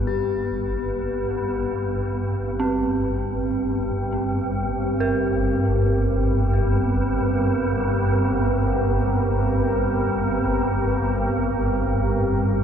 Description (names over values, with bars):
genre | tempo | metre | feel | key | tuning
dark ambient drone | free time | none | none | G minor | A4 = 440 Hz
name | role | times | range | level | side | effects
dark detuned synth bell | arpeggios | 0.0-12.6 s | C4 to Bb4 | -31 LUFS | right 3 dB | chorus, ping-pong delay
swarming drone | drone | 0.0-12.6 s | G1 to G2 | -22 LUFS | equal | built-in reverb
bronze singing bowl | texture | 0.0-12.6 s | G4 | -32 LUFS | left 7 dB | none
deep dark ambient pad | sustained chords | 1.4-12.6 s | C4 to Bb4 | -25 LUFS | right 1 dB | chorus, built-in reverb
room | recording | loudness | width
wet cathedral reverb, RT60 6.1 s | none | -20 LUFS | side -8 dB against mid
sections
0.1-12.6 A section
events
none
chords
0.1 Gm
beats
free time